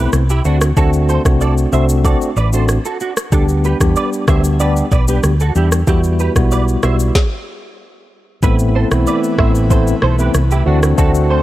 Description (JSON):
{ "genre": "afrobeats", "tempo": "94 BPM", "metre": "4/4", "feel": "straight", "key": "A dorian", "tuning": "A4 = 439 Hz", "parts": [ { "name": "tine electric piano", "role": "accompaniment", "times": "0.0-11.4 s", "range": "G3 to G4", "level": "-18 LUFS", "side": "left 2 dB", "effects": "medium stereo tremolo" }, { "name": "direct-recorded clean electric guitar", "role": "riff", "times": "0.0-11.4 s", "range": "D4 to E5", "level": "-22 LUFS", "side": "right 5 dB", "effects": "ensemble chorus, tape echo" }, { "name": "hollow-body short-scale fingered electric bass", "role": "bass", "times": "0.0-11.4 s", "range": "A1 to E2", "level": "-14 LUFS", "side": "equal", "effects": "none" }, { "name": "afro-pop drum kit", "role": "drums", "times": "0.1-11.3 s", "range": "kick drum, rim click, shaker, snare drum", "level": "-16 LUFS", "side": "equal", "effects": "none" }, { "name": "airy breathy pad", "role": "sustained chords", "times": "8.4-11.4 s", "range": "D3 to B4", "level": "-22 LUFS", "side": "right 1 dB", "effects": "chorus" } ], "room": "little or no reverb", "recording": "dark, warm production", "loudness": "-12 LUFS", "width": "side -15 dB against mid", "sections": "0.0-8.4 A section; 8.4-11.4 B section", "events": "stop 7.2-8.4", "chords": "0.4 D7; 3.3 G/D; 5.9 Emadd9; 8.4 Amadd9; 10.7 D7" }